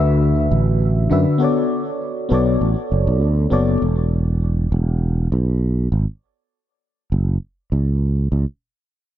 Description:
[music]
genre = sunset chillout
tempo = 100 BPM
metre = 4/4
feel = straight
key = F# minor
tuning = A4 = 440 Hz
[part]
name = mellow FM electric piano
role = accompaniment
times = 0.0-3.8 s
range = D3 to E5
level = -19 LUFS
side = moving between left 4 dB and right 2 dB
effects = chorus, auto-pan, ping-pong delay
[part]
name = sustaining fretless electric bass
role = bass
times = 0.0-8.4 s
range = E1 to F#2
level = -17 LUFS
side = right 1 dB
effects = none
[sound]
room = light reverb, small room ambience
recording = dark, warm production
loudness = -16 LUFS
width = side -12 dB against mid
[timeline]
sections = 0.0-8.6 A section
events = none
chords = 0.0 D69; 1.4 Bm7; 3.8 E5; 6.2 F#5

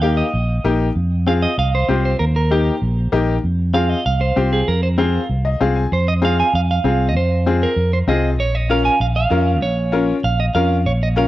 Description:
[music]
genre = latin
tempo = 194 BPM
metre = 4/4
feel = straight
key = F minor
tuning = A4 = 440 Hz
[part]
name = clean electric guitar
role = melody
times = 0.0-11.3 s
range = F4 to Ab5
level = -21 LUFS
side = right 4 dB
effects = spring reverb
[part]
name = bright upright piano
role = accompaniment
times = 0.0-11.3 s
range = Bb3 to Ab5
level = -19 LUFS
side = left 4 dB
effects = none
[part]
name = fingered electric bass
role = bass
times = 0.0-11.3 s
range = Bb1 to F2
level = -18 LUFS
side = equal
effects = none
[sound]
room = little or no reverb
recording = dry, close 1970s-style studio recording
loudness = -15 LUFS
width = side -15 dB against mid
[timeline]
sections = 0.0-5.9 A section; 5.9-11.3 B section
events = upright piano fill 5.3-5.9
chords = 0.0 Eb; 1.0 Fm; 2.2 Eb; 3.4 Fm; 8.4 Bbm

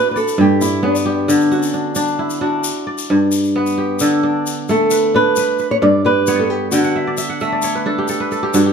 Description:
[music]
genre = west african traditional, West African string and xylophone music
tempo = 88 BPM (dotted quarters)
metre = 12/8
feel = straight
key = D major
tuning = A4 = 441 Hz
[part]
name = flamenco guitar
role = melody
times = 0.0-7.2 s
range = D4 to D5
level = -16 LUFS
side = right 1 dB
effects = none
[part]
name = kora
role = arpeggios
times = 0.0-8.7 s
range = G2 to G5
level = -16 LUFS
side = equal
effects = none
[part]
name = tube shaker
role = percussion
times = 0.2-8.6 s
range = none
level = -26 LUFS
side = left 7 dB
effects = none
[sound]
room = light reverb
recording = close, detailed microphones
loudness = -14 LUFS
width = side -6 dB against mid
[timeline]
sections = 0.0-4.0 A section; 4.0-8.7 B section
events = nylon-string guitar solo 0.0-4.0; kora fill 6.7-8.7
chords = 0.0 G; 1.3 D; 2.6 G; 4.0 D5; 5.4 G; 6.7 D; 8.1 G

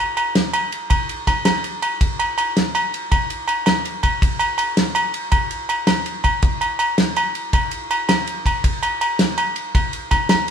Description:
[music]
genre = highlife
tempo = 108 BPM (dotted quarters)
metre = 12/8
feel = straight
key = none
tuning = none
[part]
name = damped 70s drum kit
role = drums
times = 0.2-10.5 s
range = kick drum, ride cymbal, snare drum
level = -20 LUFS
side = equal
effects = none
[part]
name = agogo bells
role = percussion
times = 0.2-10.5 s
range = none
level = -20 LUFS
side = equal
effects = none
[sound]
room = moderate stone room reverb, RT60 1.1 s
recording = band playing live in one room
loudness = -17 LUFS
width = side -8 dB against mid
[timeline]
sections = 0.0-10.5 A section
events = none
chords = none

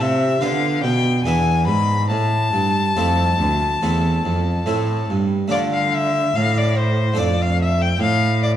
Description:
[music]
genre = classical, baroque-style sonata movement with continuo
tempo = 71 BPM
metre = 4/4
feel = straight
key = A minor, D minor from 5.5 s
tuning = A4 = 440 Hz
[part]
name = rich violin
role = melody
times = 0.0-8.5 s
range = C5 to B5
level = -21 LUFS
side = left 4 dB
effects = none
[part]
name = harpsichord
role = accompaniment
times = 0.0-8.6 s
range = D2 to A4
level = -22 LUFS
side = right 2 dB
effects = none
[part]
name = rich cello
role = bass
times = 0.0-8.6 s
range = D2 to D3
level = -20 LUFS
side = right 1 dB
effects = none
[sound]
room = wet recital hall reverb, RT60 1.5 s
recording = dark, warm production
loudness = -16 LUFS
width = side -11 dB against mid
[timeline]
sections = 0.0-5.5 A section; 5.5-8.6 A section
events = none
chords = 0.4 Bdim/D; 1.2 E7; 2.1 Am; 5.5 Dm; 7.2 Dm/F

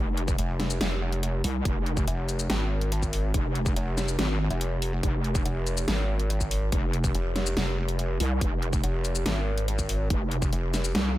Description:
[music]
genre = heavy wobble dubstep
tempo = 142 BPM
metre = 4/4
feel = half-time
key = F minor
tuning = A4 = 438 Hz
[part]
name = wobble bass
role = bass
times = 0.0-11.2 s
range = F1 to C2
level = -27 LUFS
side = equal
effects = chorus, overdrive
[part]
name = dubstep drum kit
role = drums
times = 0.2-11.0 s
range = hi-hat, shaker, snare drum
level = -31 LUFS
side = equal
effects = none
[part]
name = electronic kick drum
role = drums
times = 0.3-10.5 s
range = none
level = -29 LUFS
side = equal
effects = none
[part]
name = pulsing pluck wobble bass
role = bass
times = 0.4-10.9 s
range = F1 to Ab1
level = -27 LUFS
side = equal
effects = chorus, overdrive
[sound]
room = little or no reverb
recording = none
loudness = -25 LUFS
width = side -15 dB against mid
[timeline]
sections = 0.0-11.2 A section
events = none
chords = 0.0 Fm

